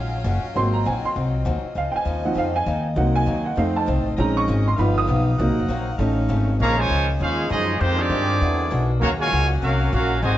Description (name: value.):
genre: jazz.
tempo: 198 BPM.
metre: 4/4.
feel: swing 61% on 8ths.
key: Bb minor.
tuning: A4 = 439 Hz.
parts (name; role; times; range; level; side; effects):
picked old ladder-braced acoustic guitar; accompaniment; 0.0-10.4 s; F2 to G4; -31 LUFS; left 3 dB; none.
clear saxophone section; sustained chords; 0.0-10.4 s; C3 to Gb5; -32 LUFS; left 2 dB; none.
upright bass; bass; 0.0-10.4 s; F1 to G2; -22 LUFS; left 1 dB; none.
warm upright piano; accompaniment; 0.6-6.5 s; F3 to D#6; -23 LUFS; right 2 dB; none.
clear trumpet section; melody; 6.6-10.4 s; Ab3 to Bb5; -22 LUFS; equal; none.
bright trombone section; second line; 6.6-10.4 s; Bb2 to Gb4; -26 LUFS; right 3 dB; none.
room: light reverb.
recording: nothing above 7.8 kHz.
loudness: -19 LUFS.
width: side -13 dB against mid.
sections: 0.0-6.6 A section; 6.6-10.4 B section.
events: upright piano solo 0.0-6.6.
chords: 0.0 Ebm11; 0.6 Ab7; 1.8 Dbmaj9; 3.0 Cm7b5; 3.6 F7; 4.2 Bbm11; 4.8 Gaug7; 5.4 Cm7b5; 6.0 F7alt; 6.6 Bbm11; 7.8 Fm9; 8.4 E9; 9.0 Ebm11.